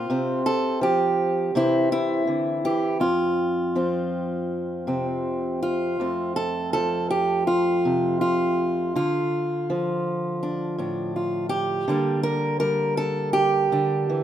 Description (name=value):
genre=folk, solo fingerstyle acoustic guitar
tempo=82 BPM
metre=4/4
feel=straight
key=F major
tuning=A4 = 440 Hz
part: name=fingerpicked acoustic archtop guitar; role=solo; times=0.0-14.2 s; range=F2 to Bb4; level=-21 LUFS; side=right 1 dB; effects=none
room=moderate large studio reverb, RT60 1.2 s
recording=minimal, uncompressed stereo recording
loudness=-21 LUFS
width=side -10 dB against mid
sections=0.0-6.0 A section; 6.0-14.2 A section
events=none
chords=0.1 Csus4; 1.5 C; 3.0 F5; 6.0 F; 9.0 Dm; 11.9 Gm/D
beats=| 0.08 0.81 1.55 2.28 | 3.02 3.76 4.51 5.26 | 6.01 6.75 7.49 8.22 | 8.96 9.69 10.42 11.16 | 11.89 12.62 13.36 14.10